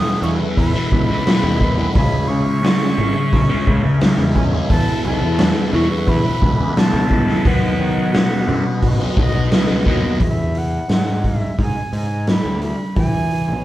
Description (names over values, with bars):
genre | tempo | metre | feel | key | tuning
psychedelic rock | 87 BPM | 4/4 | straight | E major, E mixolydian from 10.2 s | A4 = 440 Hz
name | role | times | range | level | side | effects
breathy concert flute | melody | 0.0-13.6 s | D#5 to D#6 | -26 LUFS | right 1 dB | none
percussive tonewheel organ | sustained chords | 0.0-10.2 s | F#4 to E5 | -30 LUFS | right 2 dB | slow rotary speaker, overdrive, chorus vibrato
fuzz guitar | riff | 0.0-10.2 s | E2 to C#4 | -19 LUFS | left 1 dB | distortion, phaser
fuzz picked electric bass | bass | 0.2-13.6 s | G#1 to E3 | -22 LUFS | equal | overdrive
congas | percussion | 0.2-10.0 s | none | barely audible | none | none
raw garage drum kit | drums | 0.6-13.5 s | hi-hat, kick drum, snare drum | -18 LUFS | equal | none
room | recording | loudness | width
moderate large studio reverb, RT60 1.2 s | band playing live in one room | -15 LUFS | side -14 dB against mid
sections
0.0-10.2 A section; 10.2-13.6 B section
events
none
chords
0.0 Esus4; 2.0 C#m; 4.7 Esus4; 7.5 B/D#; 10.2 E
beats
0.57 1.26 | 1.95 2.64 3.33 4.02 | 4.71 5.39 6.08 6.77 | 7.46 8.14 8.83 9.52 | 10.21 10.90 11.59 12.28 | 12.97